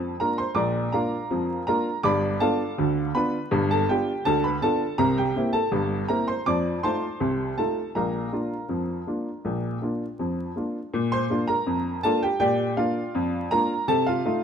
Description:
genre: ragtime piano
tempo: 81 BPM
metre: 2/4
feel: straight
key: Bb major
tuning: A4 = 441 Hz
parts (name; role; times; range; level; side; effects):
- clear upright piano; solo; 0.0-14.4 s; G1 to D6; -22 LUFS; equal; none
room: moderate echo chamber reverb, RT60 2.3 s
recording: dark, warm production, vinyl crackle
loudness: -22 LUFS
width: side -7 dB against mid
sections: 0.0-10.9 A section; 10.9-14.4 B section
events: none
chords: 0.0 Bb; 2.0 G7; 5.0 C7; 6.5 F7; 7.9 Bb; 13.9 F7/C

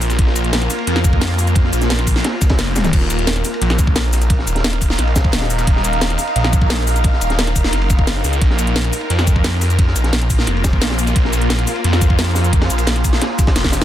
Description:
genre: dark technical drum and bass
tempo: 175 BPM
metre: 4/4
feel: straight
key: unclear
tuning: A4 = 440 Hz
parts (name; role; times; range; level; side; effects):
- swarming drone; sustained chords; 0.0-13.8 s; Bb3 to F5; -22 LUFS; equal; built-in reverb, phaser, sidechain pumping
- phased detuned saw bass; bass; 0.0-13.8 s; Eb1 to F2; -17 LUFS; equal; phaser, sidechain pumping
- drum and bass drum kit; drums; 0.0-13.8 s; crash cymbal, hi-hat, shaker, snare drum, toms; -21 LUFS; equal; soft clipping on snare
- crunchy breakbeat drum kit; drums; 0.1-13.8 s; ride cymbal, snare drum; -26 LUFS; equal; high-pass filter on cymbals, high-pass filter on snare, high-pass filter on room
- electronic kick drum; drums; 0.2-13.7 s; none; -16 LUFS; equal; none
room: digital ambience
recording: dense, heavily limited modern master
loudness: -14 LUFS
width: side -12 dB against mid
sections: 0.0-13.8 A section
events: kick drops out 2.6-2.9; drum fill 2.8, 13.6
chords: 0.0 Bb5; 2.9 Eb5; 8.4 Bb5

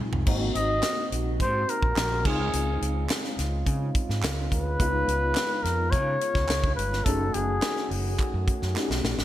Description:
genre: polished 1980s jazz-funk pop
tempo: 106 BPM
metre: 4/4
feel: straight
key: Db major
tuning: A4 = 440 Hz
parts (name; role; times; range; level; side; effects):
- tine electric piano; accompaniment; 0.0-9.2 s; C3 to Ab4; -33 LUFS; left 1 dB; overdrive, ensemble chorus
- mellow French horn section; sustained chords; 0.0-9.2 s; C3 to Gb4; -37 LUFS; right 3 dB; none
- overdriven fingered electric bass; bass; 0.1-9.2 s; Gb1 to Db3; -28 LUFS; equal; none
- tight funk drum kit; drums; 0.1-9.2 s; crash cymbal, hi-hat, kick drum, snare drum, toms; -28 LUFS; equal; gated reverb
- breathy flugelhorn; melody; 0.6-7.9 s; Ab4 to Eb5; -28 LUFS; left 1 dB; digital delay
- group handclap; percussion; 0.8-8.9 s; none; -38 LUFS; right 6 dB; none
room: light reverb, small room reverb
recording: bright 1980s-style digital production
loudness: -23 LUFS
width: side -13 dB against mid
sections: 0.3-9.2 A section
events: drum fill 0.0, 8.8-9.2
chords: 0.3 Ab9; 2.2 Dbmaj7; 4.8 Db7; 7.1 Gbm6

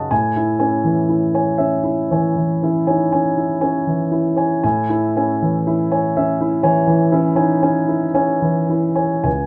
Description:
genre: classical, impressionist solo piano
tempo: 36-42 BPM (dotted quarters)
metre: 9/8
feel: rubato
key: unclear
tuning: A4 = 440 Hz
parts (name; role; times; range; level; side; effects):
- warm concert grand piano; solo; 0.0-9.5 s; C#2 to A5; -18 LUFS; equal; none
room: light reverb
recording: none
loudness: -18 LUFS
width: mono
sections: 0.0-9.5 A section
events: none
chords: 0.1 Amaj7

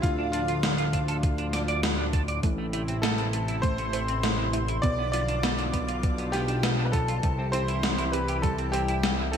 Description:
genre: synthwave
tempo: 100 BPM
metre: 4/4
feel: straight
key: A minor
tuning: A4 = 441 Hz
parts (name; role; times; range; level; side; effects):
- warm electric grand piano; melody; 0.0-9.4 s; F4 to D5; -32 LUFS; left 1 dB; digital delay
- airy dreamy lead; second line; 0.0-9.4 s; F5 to D6; -36 LUFS; equal; chorus, digital delay
- chorused pulse-width pad; sustained chords; 0.0-9.4 s; A2 to G4; -34 LUFS; left 2 dB; sidechain pumping
- fat analog bass; bass; 0.0-9.4 s; A1 to D2; -29 LUFS; equal; none
- electronic kick drum; drums; 0.0-8.6 s; none; -27 LUFS; equal; small room ambience
- gated 80s digital drum machine; drums; 0.0-9.4 s; hi-hat, snare drum; -30 LUFS; equal; gated reverb, gated reverb snare, small room ambience
- clean electric guitar; riff; 0.2-9.4 s; A3 to D5; -36 LUFS; right 4 dB; ensemble chorus, digital delay
- wide unison pluck; arpeggios; 2.4-9.4 s; G3 to D5; -35 LUFS; right 2 dB; digital delay
room: moderate lush hall reverb, RT60 1.9 s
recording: bright 1980s-style digital production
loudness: -24 LUFS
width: side -8 dB against mid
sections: 0.0-9.4 A section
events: none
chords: 0.0 Dm; 2.4 Am; 4.8 Bdim; 7.2 C

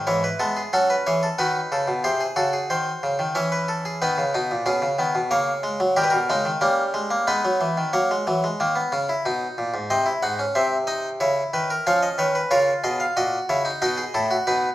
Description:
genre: classical, baroque-style 4-part fugue for harpsichord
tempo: 92 BPM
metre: 3/4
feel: straight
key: C# minor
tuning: A4 = 442 Hz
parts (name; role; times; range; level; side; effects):
- harpsichord; solo; 0.0-14.7 s; G#2 to F#5; -20 LUFS; equal; none
room: moderate recital hall reverb, RT60 1.6 s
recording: minimal, uncompressed stereo recording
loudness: -20 LUFS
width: side -14 dB against mid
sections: 0.1-7.9 A section; 7.9-14.7 B section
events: none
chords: 0.1 C#m/G#; 1.4 D#m7b5; 2.0 G#/B#; 3.4 C#m/E; 4.0 G#m; 5.3 F#add9/C#; 6.0 D#; 7.3 G#m; 7.9 F#7; 9.2 B; 9.9 G#7; 11.2 C#m; 11.9 C#7; 13.2 F#/A#; 13.8 B7

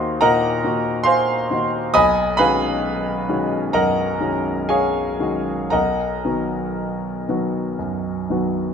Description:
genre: classical, impressionist solo piano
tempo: 56-71 BPM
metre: 4/4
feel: rubato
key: unclear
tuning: A4 = 440 Hz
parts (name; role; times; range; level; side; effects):
- clear grand piano; solo; 0.0-8.7 s; B1 to Eb6; -18 LUFS; equal; none
room: light reverb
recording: close, detailed microphones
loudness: -18 LUFS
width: side -7 dB against mid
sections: 0.0-8.7 A section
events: none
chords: 0.0 Ebm6; 2.0 B69; 5.7 Bmaj7

